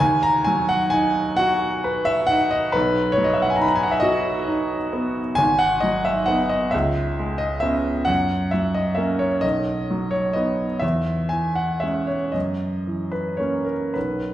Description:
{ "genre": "classical, romantic nocturne for solo piano", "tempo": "33-47 BPM (dotted quarters)", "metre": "12/8", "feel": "rubato", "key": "B major", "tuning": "A4 = 440 Hz", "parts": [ { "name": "clear baby grand piano", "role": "solo", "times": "0.0-14.3 s", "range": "G#1 to B5", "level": "-19 LUFS", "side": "equal", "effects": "none" } ], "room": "wet recital hall reverb, RT60 1.6 s", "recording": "heard from further back in the room", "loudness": "-19 LUFS", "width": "side -12 dB against mid", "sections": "0.0-14.3 A section", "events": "none", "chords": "0.0 B/D#; 2.7 B; 5.4 G#m7; 6.7 C#m7; 8.1 F#; 9.4 B; 10.8 C#m/E; 12.3 F#7" }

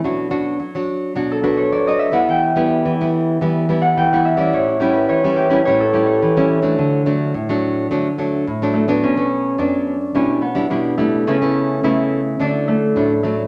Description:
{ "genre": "samba", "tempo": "107 BPM", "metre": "4/4", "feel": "straight", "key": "D major", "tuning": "A4 = 436 Hz", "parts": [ { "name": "concert harp", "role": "melody", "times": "0.0-13.5 s", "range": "A3 to G5", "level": "-21 LUFS", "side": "equal", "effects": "none" }, { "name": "nylon-string guitar", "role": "accompaniment", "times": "0.0-13.5 s", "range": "F#2 to F#4", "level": "-20 LUFS", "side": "equal", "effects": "none" } ], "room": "wet studio reverb, RT60 0.7 s", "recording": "none", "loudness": "-18 LUFS", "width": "mono", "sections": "0.0-9.0 A section; 9.0-13.5 B section", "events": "harp solo 0.0-9.0", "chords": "0.0 Bm; 2.3 Em; 4.5 A7; 6.8 D; 9.0 Bm; 10.2 Em7/B; 11.3 Aadd9/C#; 12.4 D" }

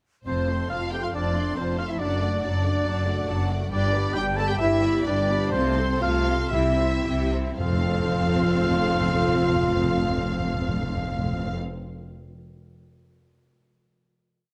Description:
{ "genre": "cinematic, heroic adventure film score", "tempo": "110-141 BPM", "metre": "4/4", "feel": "straight", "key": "F lydian", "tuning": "A4 = 440 Hz", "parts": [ { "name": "warm symphonic violin section", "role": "melody", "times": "0.3-11.6 s", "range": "C5 to A5", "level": "-35 LUFS", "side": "equal", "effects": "none" }, { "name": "hollow small flute group", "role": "second line", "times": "0.3-11.5 s", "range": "C5 to A5", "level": "-37 LUFS", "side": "equal", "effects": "none" }, { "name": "mellow clarinet", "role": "second line", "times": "0.3-11.6 s", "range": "C4 to A4", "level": "-37 LUFS", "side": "equal", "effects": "none" }, { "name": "warm oboe", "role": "second line", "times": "0.3-11.6 s", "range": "C5 to A5", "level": "-34 LUFS", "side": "equal", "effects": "none" }, { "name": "warm symphonic violin section", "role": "second line", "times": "0.3-11.5 s", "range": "A4 to C6", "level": "-39 LUFS", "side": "equal", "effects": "none" }, { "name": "warm symphonic viola section", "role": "accompaniment", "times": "0.3-11.6 s", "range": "F#3 to A4", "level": "-35 LUFS", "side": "equal", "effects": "none" }, { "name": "mellow French horn section", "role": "sustained chords", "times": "0.3-11.5 s", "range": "C4 to A4", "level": "-32 LUFS", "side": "equal", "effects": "none" }, { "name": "warm studio double bass section", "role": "bass", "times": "0.3-11.6 s", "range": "F1 to C2", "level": "-31 LUFS", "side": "equal", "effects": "none" }, { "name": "warm symphonic cello section", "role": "bass", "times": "0.3-11.6 s", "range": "F2 to C3", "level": "-32 LUFS", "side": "equal", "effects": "none" }, { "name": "timpani", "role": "percussion", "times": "0.3-0.9, 5.5-11.5 s", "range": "F2 to C3", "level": "-32 LUFS", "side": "equal", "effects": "none" } ], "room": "moderate recital hall reverb, RT60 1.6 s", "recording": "none", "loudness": "-24 LUFS", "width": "mono", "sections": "0.3-7.6 theme; 7.6-12.0 final chord", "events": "slowing down 2.9-7.6", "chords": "0.3 F; 2.0 D/F#; 3.7 G; 5.5 F/C; 6.5 C; 7.6 F" }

